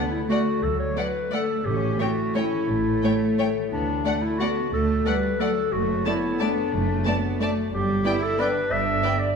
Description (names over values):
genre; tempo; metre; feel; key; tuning
classical, orchestral ballroom waltz; 178 BPM; 3/4; uneven beats, rubato; D major; A4 = 440 Hz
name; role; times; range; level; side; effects
warm studio violin section; melody; 0.0-9.1 s; F#5 to A5; -35 LUFS; left 3 dB; none
warm clarinet; second line; 0.0-9.4 s; D4 to E5; -26 LUFS; left 1 dB; none
concert harp; arpeggios; 0.0-9.4 s; F#2 to A4; -29 LUFS; left 10 dB; none
warm symphonic cello section; bass; 0.0-9.4 s; F#3 to E4; -29 LUFS; right 3 dB; none
timpani; percussion; 0.0-2.1 s; A2; -34 LUFS; right 2 dB; none
warm chamber violin section; second line; 0.3-9.1 s; C#5 to D5; -33 LUFS; left 2 dB; none
dark symphonic viola section; accompaniment; 0.3-9.1 s; A3 to B3; -31 LUFS; right 2 dB; none
rich studio double bass section; bass; 0.6-9.0 s; F#1 to D2; -29 LUFS; right 4 dB; none
room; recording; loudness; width
moderate concert hall reverb, RT60 1.9 s; minimal, uncompressed stereo recording; -21 LUFS; side -6 dB against mid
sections
0.0-9.4 A section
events
none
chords
0.0 D; 1.7 A7; 3.7 D; 5.7 D/F#; 7.7 G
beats
0.29 | 0.63 0.97 1.33 | 1.66 2.00 2.35 | 2.69 3.02 3.38 | 3.71 4.05 4.39 | 4.72 5.05 5.40 | 5.73 6.06 6.41 | 6.73 7.06 7.40 | 7.72 8.05 8.39 | 8.72 9.04